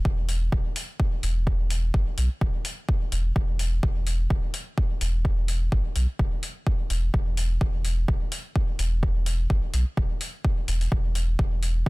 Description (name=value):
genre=dub techno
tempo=127 BPM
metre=4/4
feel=swing 55% on 16ths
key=E minor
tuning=A4 = 440 Hz
part: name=pure sine sub bass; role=bass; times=0.1-11.9 s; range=E1 to B1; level=-25 LUFS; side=equal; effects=tube saturation, sidechain pumping
part: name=electronic kick drum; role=drums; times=0.1-11.9 s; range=none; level=-25 LUFS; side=equal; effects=overdrive
part: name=electronic hi-hat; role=drums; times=0.3-11.7 s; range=none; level=-34 LUFS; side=left 2 dB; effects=none
room=little or no reverb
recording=dense, heavily limited modern master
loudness=-23 LUFS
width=side -24 dB against mid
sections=0.0-11.9 A section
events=none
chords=none